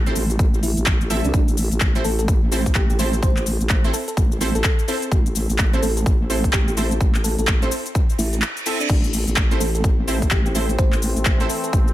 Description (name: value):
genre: bass house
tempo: 127 BPM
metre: 4/4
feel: swing 61% on 16ths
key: A minor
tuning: A4 = 441 Hz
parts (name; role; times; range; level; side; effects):
- vowel-sweep wobble bass; bass; 0.0-11.9 s; A1 to C2; -22 LUFS; equal; chorus, tube saturation, sidechain pumping
- orchestra-hit-like synth stab; stabs; 0.1-11.5 s; C4 to E5; -28 LUFS; right 2 dB; built-in reverb, sidechain pumping, dub echo
- big-room dance drum kit; drums; 0.1-11.9 s; cabasa, crash cymbal, handclaps, hi-hat; -25 LUFS; left 2 dB; none
- electronic kick drum; drums; 0.4-11.8 s; none; -18 LUFS; equal; none
- bell-like FM electric piano; melody; 0.6-11.7 s; D4 to C5; -30 LUFS; right 1 dB; chorus, tremolo, dub echo
- reverse cymbal; sound effects; 8.3-8.9 s; none; -29 LUFS; right 6 dB; none
- sweeping resonant pad; sustained chords; 8.9-11.9 s; E3 to C4; -30 LUFS; left 2 dB; chorus, sidechain pumping
room: little or no reverb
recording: none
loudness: -17 LUFS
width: side -14 dB against mid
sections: 0.0-11.9 A section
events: reverse cymbal 8.3-8.9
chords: 0.0 Am